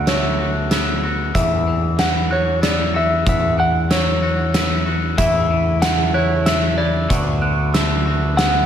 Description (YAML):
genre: post-rock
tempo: 94 BPM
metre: 3/4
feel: straight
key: unclear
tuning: A4 = 439 Hz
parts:
  - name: clean electric guitar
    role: melody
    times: 0.0-8.7 s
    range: C#5 to F#5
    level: -21 LUFS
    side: equal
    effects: spring reverb, slapback echo
  - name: pedal steel guitar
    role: sustained chords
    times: 0.0-8.7 s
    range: C#3 to F#4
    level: -32 LUFS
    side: right 2 dB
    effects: none
  - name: glockenspiel with rubber mallets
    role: arpeggios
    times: 0.0-8.7 s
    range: E6 to F#6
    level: -28 LUFS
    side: right 1 dB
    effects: slapback echo
  - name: twangy electric guitar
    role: arpeggios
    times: 0.0-8.7 s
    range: D3 to F#4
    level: -27 LUFS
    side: left 3 dB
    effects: slapback echo
  - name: growling picked electric bass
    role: bass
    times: 0.0-8.7 s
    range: D2 to E2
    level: -20 LUFS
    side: equal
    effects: overdrive
  - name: oversized low-tuned drum kit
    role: drums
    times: 0.1-8.5 s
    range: hi-hat, kick drum, snare drum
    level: -21 LUFS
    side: equal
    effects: none
room: light reverb, small room ambience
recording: none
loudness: -15 LUFS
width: side -9 dB against mid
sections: 0.0-8.7 A section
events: none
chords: 0.0 D6; 1.4 Esus2; 5.2 A/E; 7.1 D6